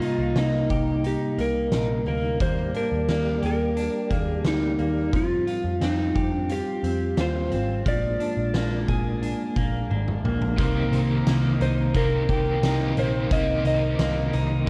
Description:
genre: dream pop.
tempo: 88 BPM.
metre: 4/4.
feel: straight.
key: C minor.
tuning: A4 = 441 Hz.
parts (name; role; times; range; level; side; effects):
electric slide guitar; melody; 0.0-14.6 s; Eb4 to Eb5; -30 LUFS; equal; delay.
mellow tonewheel organ; sustained chords; 0.0-14.7 s; C3 to D5; -31 LUFS; equal; chorus vibrato, lush chorus.
clean electric guitar; arpeggios; 0.0-14.7 s; F3 to Ab4; -34 LUFS; equal; lush chorus, delay.
oversized low-tuned drum kit; drums; 0.0-14.7 s; hi-hat, kick drum, snare drum, tambourine, toms; -31 LUFS; equal; none.
vintage muted picked electric bass; bass; 0.2-14.7 s; Ab1 to F2; -30 LUFS; equal; none.
crunchy overdriven guitar; accompaniment; 10.6-14.7 s; C3 to G4; -31 LUFS; equal; tremolo, lush chorus.
room: moderate concert hall reverb, RT60 2.0 s.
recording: worn, warbling old tape, cassette tape, warbly pitch drift.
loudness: -24 LUFS.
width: mono.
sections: 0.0-10.6 A section; 10.6-14.7 B section.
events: drum fill 9.9-10.6.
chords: 0.0 Cm7; 2.4 Ebmaj7; 5.1 Fsus2; 7.9 Bb7; 10.6 Cm7.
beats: 0.36 1.04 1.72 | 2.40 3.08 3.77 4.45 | 5.13 5.81 6.49 7.18 | 7.86 8.54 9.22 9.90 | 10.59 11.27 11.95 12.63 | 13.31 13.99 14.68.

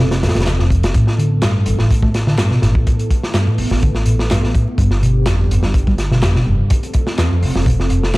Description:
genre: breakbeat, breaks.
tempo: 125 BPM.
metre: 4/4.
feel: straight.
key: A minor.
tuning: A4 = 440 Hz.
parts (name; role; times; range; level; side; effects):
phased analog pad; sustained chords; 0.0-8.2 s; D3 to A4; -25 LUFS; right 1 dB; phaser, chorus, sidechain pumping.
hollow-body short-scale picked electric bass; riff; 0.0-8.2 s; E2 to A3; -17 LUFS; equal; vintage 12-bit sampler grit.
upright bass; bass; 0.0-8.2 s; F1 to A1; -18 LUFS; equal; tube saturation.
crunchy breakbeat drum kit; drums; 0.1-8.2 s; hi-hat, kick drum, snare drum; -18 LUFS; equal; none.
electronic handclaps; drums; 0.5-8.2 s; none; -30 LUFS; equal; none.
room: small room ambience.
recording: dark, warm production, vinyl crackle.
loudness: -13 LUFS.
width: side -20 dB against mid.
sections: 0.0-8.2 A section.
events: none.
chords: 0.0 F; 0.9 Asus2; 4.8 G; 6.7 F.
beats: 0.47 | 0.94 1.43 1.91 2.38 | 2.87 3.35 3.83 4.30 | 4.79 5.26 5.75 6.22 | 6.71 7.18 7.67 8.14.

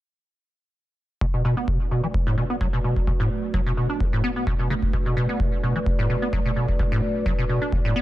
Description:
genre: acid house.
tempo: 129 BPM.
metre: 4/4.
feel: swing 53% on 16ths.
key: B minor.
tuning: A4 = 437 Hz.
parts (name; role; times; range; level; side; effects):
dark analog pad; sustained chords; 1.6-8.0 s; A3 to D5; -30 LUFS; right 1 dB; chorus, phaser, sidechain pumping.
acid bass, square; riff; 1.2-8.0 s; A2 to D4; -24 LUFS; equal; overdrive, wide subtle chorus, sidechain pumping.
electronic kick drum; drums; 1.2-7.8 s; none; -24 LUFS; equal; none.
room: digital ambience.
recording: dense, heavily limited modern master.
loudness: -21 LUFS.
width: side -15 dB against mid.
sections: 1.2-8.0 A section.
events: filter sweep on acid bass 1.2-8.0.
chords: 1.2 Bm7.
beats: | 1.21 1.68 2.14 2.61 | 3.07 3.54 4.00 4.47 | 4.93 5.40 5.87 6.33 | 6.79 7.26 7.73.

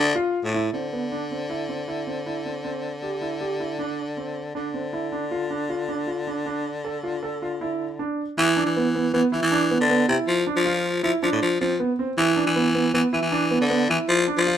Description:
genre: progressive instrumental, progressive.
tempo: 157 BPM.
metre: 5/4.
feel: straight.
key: D dorian.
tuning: A4 = 440 Hz.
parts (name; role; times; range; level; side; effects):
breathy baritone saxophone; bass; 0.0-14.6 s; A2 to F3; -24 LUFS; left 1 dB; none.
warm concert grand piano; arpeggios; 0.2-14.6 s; B3 to A4; -25 LUFS; right 3 dB; none.
room: moderate studio reverb, RT60 0.7 s.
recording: minimal, uncompressed stereo recording.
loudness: -21 LUFS.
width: side -9 dB against mid.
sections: 0.7-8.4 A section; 8.4-14.6 B section.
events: none.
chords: 0.0 Dmadd9; 0.7 D7sus2; 4.6 Dm; 8.4 E5; 10.3 Dm/F; 12.2 E5.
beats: 0.35 | 0.73 1.11 1.49 1.87 2.26 | 2.64 3.02 3.40 3.79 4.17 | 4.55 4.93 5.32 5.70 6.08 | 6.46 6.85 7.23 7.61 7.99 | 8.37 8.76 9.14 9.52 9.90 | 10.28 10.66 11.04 11.42 11.80 | 12.18 12.56 12.94 13.32 13.70 | 14.08 14.46.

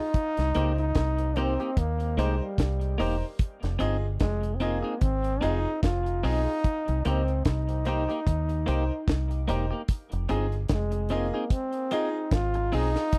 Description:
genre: roots reggae.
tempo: 74 BPM.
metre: 4/4.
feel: swing 56% on 16ths.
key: F minor.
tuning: A4 = 442 Hz.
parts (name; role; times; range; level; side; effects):
mellow trombone; melody; 0.0-13.2 s; G3 to F4; -33 LUFS; equal; dub echo.
deep reggae drum kit; drums; 0.1-13.2 s; hi-hat, kick drum, snare drum; -28 LUFS; equal; none.
deep dub fingered electric bass; bass; 0.4-13.0 s; E1 to Eb2; -30 LUFS; equal; none.
bright upright piano; stabs; 0.5-13.0 s; Eb4 to Eb5; -36 LUFS; equal; none.
clean electric guitar; accompaniment; 0.6-12.9 s; Bb3 to Ab4; -36 LUFS; equal; dub echo.
room: studio reverb.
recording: dry, close 1970s-style studio recording.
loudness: -27 LUFS.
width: mono.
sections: 0.0-13.2 A section.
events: none.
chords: 0.1 Cm7; 3.4 Fm7; 6.6 Cm7; 9.9 Fm7.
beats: | 0.14 0.96 1.77 2.58 | 3.40 4.21 5.02 5.83 | 6.64 7.46 8.27 9.08 | 9.89 10.70 11.51 12.32 | 13.13.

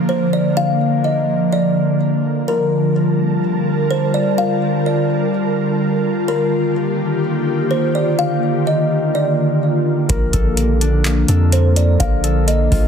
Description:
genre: hip hop, atmospheric cloud-rap.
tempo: 126 BPM.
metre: 4/4.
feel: half-time.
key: Bb major.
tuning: A4 = 440 Hz.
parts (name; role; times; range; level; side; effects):
ethereal airy pad; sustained chords; 0.0-12.9 s; D3 to A5; -17 LUFS; equal; ensemble chorus, built-in reverb.
kalimba; melody; 0.1-12.9 s; Bb4 to F5; -21 LUFS; equal; ping-pong delay.
concert harp; arpeggios; 10.1-12.9 s; Bb3 to A4; -24 LUFS; left 3 dB; ping-pong delay.
long sustained 808-style bass; bass; 10.1-12.9 s; Bb1 to F2; -15 LUFS; equal; none.
booming analog drum machine; drums; 10.1-12.9 s; handclaps, hi-hat, kick drum; -18 LUFS; equal; none.
room: light reverb.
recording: dense, heavily limited modern master.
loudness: -14 LUFS.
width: side -7 dB against mid.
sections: 0.0-12.9 A section.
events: none.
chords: 0.0 Bb; 2.5 Gm7; 6.3 Ebmaj7; 10.1 Bbmaj7.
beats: 0.10 | 0.57 1.05 1.52 2.00 | 2.48 2.95 3.43 3.91 | 4.38 4.86 5.33 5.81 | 6.29 6.76 7.24 7.71 | 8.19 8.67 9.14 9.62 | 10.10 10.57 11.05 11.53 | 12.00 12.48.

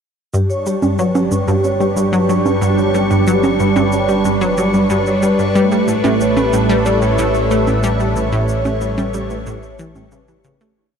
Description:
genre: ambient, sequencer-driven space music.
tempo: 92 BPM.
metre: 4/4.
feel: straight.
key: G lydian.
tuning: A4 = 438 Hz.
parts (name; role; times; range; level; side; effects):
phased analog pad; sustained chords; 0.3-10.8 s; G3 to E5; -18 LUFS; right 2 dB; phaser, chorus.
vibraphone with soft mallets; arpeggios; 0.3-10.7 s; G3 to C#5; -22 LUFS; moving between left 4 dB and right 4 dB; auto-pan, analog delay.
analog pluck; riff; 0.3-10.7 s; G2 to A3; -18 LUFS; left 1 dB; chorus, analog delay.
analog drone; bass; 1.1-10.7 s; G1 to A1; -23 LUFS; left 1 dB; chorus, tube saturation.
shaker and congas; percussion; 0.3-10.7 s; none; -24 LUFS; right 3 dB; overdrive, analog delay.
bubbling stepped-filter texture; texture; 0.3-10.8 s; D4 to C#6; -26 LUFS; equal; chorus, built-in reverb.
breathy flute-like synth lead; melody; 6.2-10.1 s; B4 to D5; -22 LUFS; equal; wide subtle chorus, analog delay.
room: wet huge ambient reverb, RT60 7.2 s.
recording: dreamy mix soaked in reverb, cassette tape.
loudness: -13 LUFS.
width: side -7 dB against mid.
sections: 0.3-10.8 A section.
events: fade-in on synth drone 0.3-10.8; fade-out 7.3-10.8.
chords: 0.3 G; 5.6 Aadd9.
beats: | 0.34 0.99 1.64 2.29 | 2.94 3.60 4.25 4.90 | 5.55 6.21 6.86 7.51 | 8.16 8.81 9.47 10.12.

